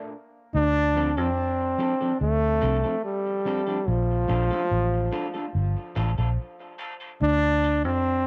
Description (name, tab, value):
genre	reggae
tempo	72 BPM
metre	4/4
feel	straight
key	D minor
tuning	A4 = 441 Hz
part	clear trombone	melody	0.5-8.3 s	F3 to D4	-27 LUFS	equal	cassette tape, dub echo
part	vintage muted fingered electric bass	bass	0.5-8.3 s	G1 to F2	-27 LUFS	equal	none
part	electric guitar at the edge of break-up	accompaniment	1.0-8.0 s	F3 to A4	-36 LUFS	equal	high-pass filter, cassette tape, dub echo
room	light reverb, small room reverb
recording	home recording on cassette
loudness	-25 LUFS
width	mono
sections	0.0-8.3 A section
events	break 0.0-0.5; filter sweep on clean electric guitar 3.9-8.3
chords	0.0 N.C.; 0.5 Dm7; 3.9 Bbmaj7; 7.2 Dm7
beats	| 0.54 1.37 2.21 3.04 | 3.87 4.71 5.54 6.38 | 7.21 8.04